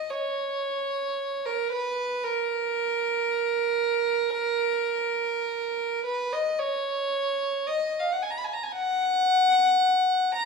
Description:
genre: classical, free, expressive piece for unaccompanied violin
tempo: 56 BPM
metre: 4/4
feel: rubato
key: unclear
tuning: A4 = 440 Hz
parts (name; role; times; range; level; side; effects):
- rich violin; solo; 0.0-10.5 s; Bb4 to Cb6; -24 LUFS; equal; none
room: moderate recital hall reverb, RT60 1.7 s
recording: studio reverb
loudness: -24 LUFS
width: side -4 dB against mid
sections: 0.0-10.5 A section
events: none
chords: none

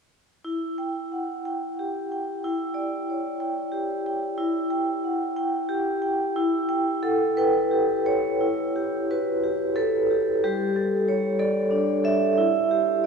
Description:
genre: classical, contemporary piece for solo vibraphone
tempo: 60 BPM (dotted quarters)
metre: 6/8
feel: rubato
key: E dorian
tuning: A4 = 441 Hz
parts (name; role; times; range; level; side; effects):
- vibraphone with medium hard mallets; solo; 0.4-13.1 s; G3 to G5; -22 LUFS; equal; none
room: wet cathedral reverb, RT60 4.6 s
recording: recorded in a church or concert hall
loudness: -22 LUFS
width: side -5 dB against mid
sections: 0.4-8.4 A section; 8.4-13.1 B section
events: none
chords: 0.4 Em9; 4.4 Em; 10.4 Gsus2; 12.4 Em

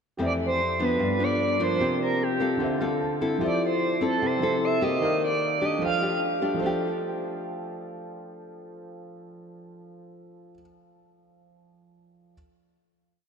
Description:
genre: bossa nova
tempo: 150 BPM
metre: 4/4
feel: straight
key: F major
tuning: A4 = 438 Hz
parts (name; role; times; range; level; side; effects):
- reedy FM lead; melody; 0.2-6.2 s; G4 to F5; -27 LUFS; right 2 dB; chorus, tremolo, analog delay
- nylon-string guitar; accompaniment; 0.2-10.7 s; F2 to A4; -27 LUFS; left 2 dB; none
- warm concert grand piano; accompaniment; 0.2-12.3 s; D3 to A5; -33 LUFS; right 3 dB; none
room: wet lush hall reverb, RT60 2.9 s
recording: dreamy mix soaked in reverb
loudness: -23 LUFS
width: side -6 dB against mid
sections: 0.2-6.6 A section; 6.6-9.8 final chord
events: grand piano fill 2.6-3.4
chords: 0.2 Fmaj7; 1.0 G7; 1.8 C9sus4; 2.6 Dm7; 3.4 Fmaj7; 5.0 Ebmaj7; 5.8 F69

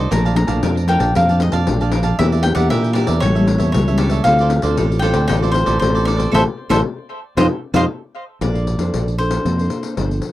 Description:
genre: samba and choro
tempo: 116 BPM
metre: 4/4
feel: straight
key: unclear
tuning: A4 = 439 Hz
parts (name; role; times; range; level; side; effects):
- cavaquinho; melody; 0.0-10.2 s; A4 to Bb5; -21 LUFS; equal; tape echo
- cavaquinho; accompaniment; 0.0-7.8 s; F4 to A5; -25 LUFS; right 7 dB; none
- nylon-string guitar; accompaniment; 0.0-10.3 s; F2 to C5; -21 LUFS; left 1 dB; none
- fingered electric bass; bass; 0.0-10.2 s; G1 to Bb2; -18 LUFS; right 1 dB; none
- pandeiro; percussion; 0.1-10.3 s; none; -23 LUFS; left 5 dB; none
room: light reverb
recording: dry, close 1970s-style studio recording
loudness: -14 LUFS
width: side -15 dB against mid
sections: 0.0-8.4 A section; 8.4-10.3 B section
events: band accent 6.3-8.4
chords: 0.1 Bbmaj7; 2.2 Em7b5; 3.2 A7b9; 4.3 Dm7; 6.3 Am; 7.4 F5; 8.4 Bbmaj9

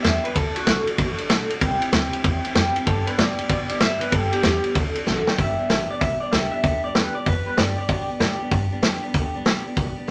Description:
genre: rockabilly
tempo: 191 BPM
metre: 4/4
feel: swing 64% on 8ths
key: G major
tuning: A4 = 439 Hz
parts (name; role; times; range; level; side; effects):
- electric guitar through a small old amp; melody; 0.0-8.4 s; F#4 to G5; -29 LUFS; equal; none
- picked steel-string acoustic guitar; accompaniment; 0.0-10.1 s; G2 to A4; -30 LUFS; equal; none
- upright bass; bass; 0.0-10.0 s; G1 to B2; -30 LUFS; equal; none
- vintage drum kit; drums; 0.0-10.1 s; hi-hat, kick drum, ride cymbal, snare drum; -24 LUFS; equal; none
room: moderate club reverb, RT60 0.7 s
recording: none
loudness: -22 LUFS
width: mono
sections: 0.0-5.4 A section; 5.4-10.1 B section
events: clean electric guitar solo 0.0-5.4; drum fill 5.1-5.4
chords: 0.4 D; 1.6 C; 2.9 G; 4.8 D; 5.4 G

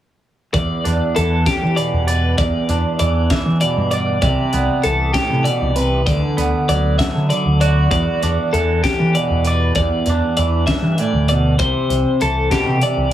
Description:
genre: math rock and midwest emo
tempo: 65 BPM (dotted quarters)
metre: 6/8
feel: straight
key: E minor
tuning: A4 = 440 Hz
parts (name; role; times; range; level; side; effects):
- twangy electric guitar; accompaniment; 0.5-13.1 s; E2 to D5; -20 LUFS; right 3 dB; phaser
- twelve-string electric guitar; arpeggios; 0.5-13.1 s; G4 to E5; -20 LUFS; left 2 dB; analog delay
- growling fingered electric bass; bass; 0.5-13.1 s; C2 to E3; -18 LUFS; equal; overdrive
- crisp fusion drum kit; drums; 0.5-13.0 s; hi-hat, kick drum, snare drum; -23 LUFS; equal; none
room: light reverb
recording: heavily compressed radio sound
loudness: -15 LUFS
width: side -12 dB against mid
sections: 0.5-13.1 A section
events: none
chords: 0.5 Em7; 4.2 Cmaj9; 6.1 D69; 7.9 Em9; 11.6 Cmaj9

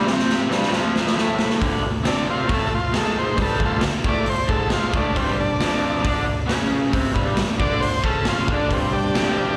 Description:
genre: garage rock duo or trio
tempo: 135 BPM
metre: 4/4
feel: straight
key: unclear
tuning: A4 = 440 Hz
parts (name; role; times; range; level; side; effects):
- raw garage guitar; riff; 0.0-9.6 s; D2 to D4; -26 LUFS; equal; overdrive, slapback echo
- raw garage drum kit; drums; 0.1-9.3 s; hi-hat, kick drum, snare drum; -24 LUFS; equal; none
- overdriven combo organ; melody; 2.1-9.6 s; C4 to D5; -26 LUFS; equal; slapback echo
room: little or no reverb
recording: live gig heard through the venue's PA, recital hall reverb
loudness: -21 LUFS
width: mono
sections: 0.0-1.6 A section; 1.6-9.6 B section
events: drum fill 0.0-1.6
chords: 0.0 N.C.; 1.6 D5; 5.2 G5

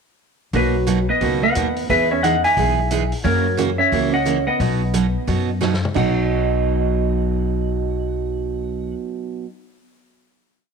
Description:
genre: country, western swing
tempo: 177 BPM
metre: 4/4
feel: swing 62% on 8ths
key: B major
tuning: A4 = 440 Hz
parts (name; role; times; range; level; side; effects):
- clean lap steel guitar; melody; 0.5-8.9 s; F#4 to G#5; -20 LUFS; left 3 dB; none
- picked steel-string acoustic guitar; accompaniment; 0.5-9.5 s; B2 to G#4; -23 LUFS; right 9 dB; none
- upright bass; bass; 0.5-8.9 s; B1 to F#2; -22 LUFS; left 3 dB; transformer saturation
- vintage drum kit; drums; 0.5-6.1 s; crash cymbal, hi-hat, kick drum, snare drum, toms; -31 LUFS; left 2 dB; none
- hollow-body jazz guitar; second line; 0.6-8.9 s; F#3 to E4; -26 LUFS; right 10 dB; none
room: light reverb, studio ambience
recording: 1960s-style stereo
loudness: -17 LUFS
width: side -5 dB against mid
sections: 0.5-6.0 A section; 6.0-8.7 final chord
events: drum fill 5.6-6.0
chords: 0.5 Bmaj7; 1.9 Emaj7; 3.2 F#7; 4.6 B

